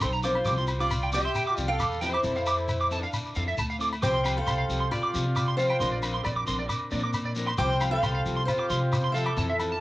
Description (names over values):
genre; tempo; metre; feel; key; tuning
highlife guitar band; 135 BPM; 4/4; straight; C mixolydian; A4 = 440 Hz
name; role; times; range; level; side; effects
picked steel-string acoustic guitar; melody; 0.0-9.8 s; C4 to G5; -30 LUFS; equal; cassette tape
breathy trumpet; second line; 0.0-9.8 s; C4 to C5; -37 LUFS; left 1 dB; cassette tape
mellow electric guitar; accompaniment; 0.0-9.7 s; E3 to Bb4; -36 LUFS; left 2 dB; cassette tape
electric guitar at the edge of break-up; arpeggios; 0.0-9.8 s; D5 to D6; -30 LUFS; right 2 dB; analog chorus, cassette tape
upright bass; bass; 0.0-9.8 s; Bb1 to C3; -30 LUFS; equal; none
agogo bells; percussion; 0.0-9.7 s; none; -37 LUFS; left 2 dB; none
shekere; percussion; 0.0-9.7 s; none; -35 LUFS; left 1 dB; none
overdriven combo organ; sustained chords; 4.0-9.8 s; C4 to Bb4; -40 LUFS; left 1 dB; spring reverb, cassette tape
room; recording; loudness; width
moderate booth ambience, RT60 0.2 s; home recording on cassette; -24 LUFS; side -17 dB against mid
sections
0.0-4.0 A section; 4.0-9.8 B section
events
none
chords
0.5 Csus4; 2.2 Fmaj7; 4.0 Csus4; 5.8 Bbadd9; 7.6 Csus4